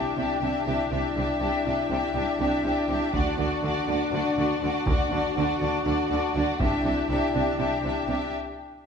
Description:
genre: cinematic, epic orchestral film score.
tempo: 243 BPM (eighths).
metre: 7/8.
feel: straight.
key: unclear.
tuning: A4 = 443 Hz.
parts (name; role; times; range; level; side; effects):
warm symphonic violin section; melody; 0.0-8.3 s; D5 to E5; -33 LUFS; left 4 dB; none.
warm symphonic violin section; second line; 0.0-8.3 s; F#4 to G4; -31 LUFS; left 4 dB; none.
rich symphonic viola section; accompaniment; 0.0-8.3 s; D4; -30 LUFS; right 2 dB; none.
mellow French horn section; sustained chords; 0.0-8.3 s; D4 to F#4; -30 LUFS; left 4 dB; none.
clear symphonic double bass section; bass; 0.2-8.2 s; C2 to D2; -34 LUFS; right 3 dB; none.
dark studio cello section; bass; 0.2-8.2 s; C3 to D3; -31 LUFS; right 3 dB; none.
taiko ensemble; drums; 3.1-7.1 s; none; -29 LUFS; equal; none.
room: wet recital hall reverb, RT60 1.4 s.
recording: recorded in a church or concert hall, nothing above 10.3 kHz.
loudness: -23 LUFS.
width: side -6 dB against mid.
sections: 0.0-8.9 A section.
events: break 8.3-8.9.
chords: 0.0 Cadd9; 3.1 D; 6.6 Cadd9.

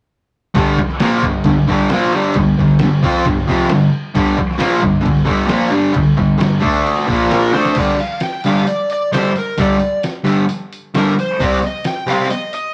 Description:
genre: garage rock duo or trio.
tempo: 133 BPM.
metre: 4/4.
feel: straight.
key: G minor.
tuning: A4 = 439 Hz.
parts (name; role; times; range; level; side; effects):
fuzz guitar; riff; 0.5-12.3 s; F2 to F4; -16 LUFS; equal; distortion.
lo-fi sampler-style drum kit; drums; 0.5-12.6 s; crash cymbal, hi-hat, kick drum, snare drum; -24 LUFS; equal; none.
overdriven slide guitar; melody; 7.3-12.7 s; Bb4 to G5; -22 LUFS; equal; none.
room: moderate stone room reverb, RT60 1.3 s.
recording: rough rehearsal-room recording.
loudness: -15 LUFS.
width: mono.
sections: 0.6-7.8 A section; 7.8-12.7 B section.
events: drum fill 7.5.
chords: 0.6 Gm; 6.6 D5; 7.1 Bb5; 7.5 Amadd11/D; 7.8 G5; 11.4 Cm.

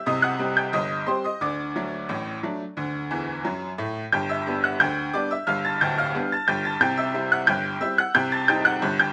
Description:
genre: ragtime piano.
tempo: 89 BPM.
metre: 2/4.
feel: straight.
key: unclear.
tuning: A4 = 440 Hz.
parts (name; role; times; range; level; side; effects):
tack piano; solo; 0.0-9.1 s; D1 to A6; -24 LUFS; equal; slapback echo.
room: little or no reverb.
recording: recorded outdoors, with no room sound, lossy compression artefacts.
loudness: -24 LUFS.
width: mono.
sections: 0.0-9.1 A section.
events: honky-tonk piano fill 3.1-4.1.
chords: 0.1 Cm; 1.4 D; 4.1 G; 5.5 G7; 6.8 C; 8.1 Cm.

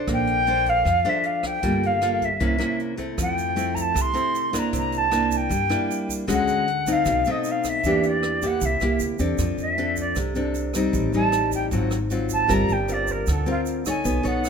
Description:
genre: bossa nova.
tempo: 155 BPM.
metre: 4/4.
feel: straight.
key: F major from 9.4 s.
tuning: A4 = 440 Hz.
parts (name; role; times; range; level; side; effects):
nylon-string guitar; accompaniment; 0.0-14.5 s; Ab2 to Db5; -24 LUFS; left 1 dB; none.
jazz flute; melody; 0.1-14.5 s; F4 to C6; -24 LUFS; equal; none.
upright bass; bass; 0.1-14.5 s; G1 to G2; -28 LUFS; right 1 dB; none.
jazz brush drum kit; drums; 0.1-14.5 s; hi-hat, kick drum, rim click; -34 LUFS; right 1 dB; none.
egg shaker; percussion; 3.2-14.5 s; none; -37 LUFS; right 9 dB; none.
room: moderate large studio reverb, RT60 1.5 s.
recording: minimal, uncompressed stereo recording.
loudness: -20 LUFS.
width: side -6 dB against mid.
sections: 0.0-9.4 A section; 9.4-14.5 B section.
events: flute solo 9.4-14.5.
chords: 0.1 Bbmaj9; 1.6 Gm9; 2.4 C7b9; 3.2 Fmaj7; 4.7 C9; 6.3 Dmaj7#11; 7.1 B7b9; 7.8 Em7b5; 8.6 C7; 9.4 F6; 10.9 Am7b5; 11.7 Ab6; 12.5 Gm11.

